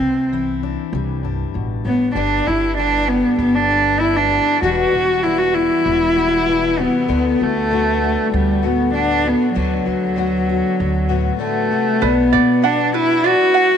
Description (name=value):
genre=indie folk with a building arrangement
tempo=97 BPM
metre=4/4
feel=straight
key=unclear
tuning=A4 = 440 Hz
part: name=warm cello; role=melody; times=0.0-13.8 s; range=F#3 to F#4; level=-16 LUFS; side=right 1 dB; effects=tape echo
part: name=fingerpicked steel-string acoustic guitar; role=accompaniment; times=0.0-13.8 s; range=E2 to G4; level=-26 LUFS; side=left 10 dB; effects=none
part: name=upright bass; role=bass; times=0.0-13.3 s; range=E1 to B2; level=-24 LUFS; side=right 1 dB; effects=none
part: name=picked twelve-string acoustic guitar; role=accompaniment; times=2.2-13.8 s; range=E2 to G4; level=-25 LUFS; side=left 13 dB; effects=none
part: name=ukulele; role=arpeggios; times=12.0-13.8 s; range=B4 to F#5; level=-19 LUFS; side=right 13 dB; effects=none
room=light reverb, studio reverb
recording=1960s-style stereo with parts hard left and right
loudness=-15 LUFS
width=side -8 dB against mid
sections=0.0-12.0 A section; 12.0-13.8 B section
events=none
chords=0.0 Cadd9; 2.2 G; 4.6 Emadd9; 7.1 D6; 12.0 Bm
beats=0.32 0.93 1.55 | 2.16 2.78 3.40 4.01 | 4.63 5.24 5.86 6.48 | 7.09 7.71 8.32 8.94 | 9.55 10.17 10.79 11.40 | 12.02 12.63 13.24